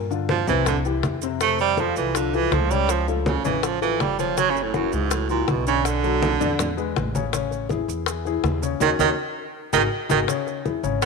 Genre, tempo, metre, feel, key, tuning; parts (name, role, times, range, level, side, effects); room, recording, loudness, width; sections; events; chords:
Afro-Cuban jazz; 162 BPM; 4/4; straight; A4 = 440 Hz
warm baby grand piano; accompaniment; 0.0-11.1 s; C3 to D5; -26 LUFS; left 12 dB
upright bass; bass; 0.0-11.1 s; F#1 to G2; -28 LUFS; equal
bongos; percussion; 0.1-11.1 s; -29 LUFS; left 14 dB
congas; percussion; 0.1-11.1 s; -29 LUFS; equal
maracas; percussion; 0.1-11.1 s; -36 LUFS; right 17 dB
clear baritone saxophone; second line; 0.3-11.1 s; F#2 to A3; -22 LUFS; right 10 dB
moderate echo chamber reverb, RT60 2.1 s; 1960s-style stereo with parts hard left and right; -20 LUFS; side -4 dB against mid
0.0-10.3 A section
baritone saxophone solo 0.0-11.1; band accent 8.8-10.3
0.0 G7(no3); 0.7 C; 1.4 F; 2.9 C#aug; 4.4 F#5; 5.9 Bm7; 6.6 E6; 7.3 Amaj7; 8.8 D#m7; 9.5 G#5; 10.3 C#m